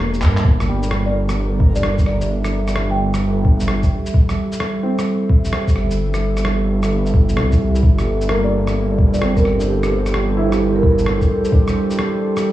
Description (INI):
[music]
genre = future garage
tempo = 130 BPM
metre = 4/4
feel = swing 65% on 16ths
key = G dorian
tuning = A4 = 440 Hz
[part]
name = warm upright piano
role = accompaniment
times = 0.0-12.5 s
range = G3 to E4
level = -28 LUFS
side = left 1 dB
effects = vintage 12-bit sampler grit, sidechain pumping, analog delay
[part]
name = dark analog pad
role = sustained chords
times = 0.0-12.5 s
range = G3 to A5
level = -21 LUFS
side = right 2 dB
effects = chorus, vintage 12-bit sampler grit, sidechain pumping
[part]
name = swelling detuned saw bass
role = bass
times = 0.0-11.3 s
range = E1 to G2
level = -19 LUFS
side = equal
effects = tube saturation
[part]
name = backwards swelling texture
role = texture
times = 0.0-0.5 s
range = Bb4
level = -34 LUFS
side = right 2 dB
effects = built-in reverb
[part]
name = electronic shaker, handclaps and rim click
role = drums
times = 0.1-12.4 s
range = none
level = -26 LUFS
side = equal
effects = studio reverb
[part]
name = electronic kick drum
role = drums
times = 0.4-11.6 s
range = none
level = -15 LUFS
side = equal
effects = overdrive, studio reverb
[part]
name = buzzing marimba with soft mallets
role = melody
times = 1.1-3.2, 8.4-10.9 s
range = G4 to G5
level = -24 LUFS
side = right 1 dB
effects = tape echo
[sound]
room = digital ambience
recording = played on a big sound system in a bare room, large studio reverb, small room ambience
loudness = -15 LUFS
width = side -14 dB against mid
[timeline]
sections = 0.5-12.5 A section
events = break 0.0-0.5; drum fill 0.2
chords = 0.5 Gm69